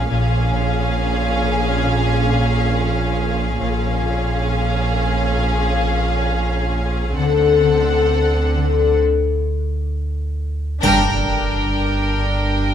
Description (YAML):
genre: cinematic, suspense film score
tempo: 68 BPM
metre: 4/4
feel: straight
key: unclear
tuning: A4 = 440 Hz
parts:
  - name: warm studio violin section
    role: melody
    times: 0.0-12.7 s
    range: F5 to G5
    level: -26 LUFS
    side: left 2 dB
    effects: none
  - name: rich studio violin section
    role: second line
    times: 0.0-12.7 s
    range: Ab4 to Bb4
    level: -24 LUFS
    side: left 1 dB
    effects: none
  - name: warm studio viola section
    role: accompaniment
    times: 0.0-12.7 s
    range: C4 to D4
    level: -26 LUFS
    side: equal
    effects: none
  - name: concert harp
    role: riff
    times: 0.0-12.7 s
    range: G2 to D4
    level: -23 LUFS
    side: left 9 dB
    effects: none
  - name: dark studio double bass section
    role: bass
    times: 0.0-12.7 s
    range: G1 to D2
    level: -25 LUFS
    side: right 4 dB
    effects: none
  - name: warm studio cello section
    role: bass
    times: 0.0-12.7 s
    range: G2 to D3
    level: -25 LUFS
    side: right 3 dB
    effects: none
  - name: pure sine sub bass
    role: drone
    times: 0.0-12.7 s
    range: G1 to D2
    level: -22 LUFS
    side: right 1 dB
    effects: none
  - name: triangle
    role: percussion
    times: 10.8-12.6 s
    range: none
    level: -31 LUFS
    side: left 5 dB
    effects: none
  - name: impact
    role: sound effects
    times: 10.8-12.7 s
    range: none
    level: -28 LUFS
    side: right 1 dB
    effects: none
room: light reverb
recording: close, detailed microphones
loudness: -16 LUFS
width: side -9 dB against mid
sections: 0.0-10.8 A section; 10.8-12.7 B section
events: break 9.0-10.8; band accent 10.8-11.7; impact 10.8-12.7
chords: 0.0 Bbm7; 7.2 D7; 10.8 Gm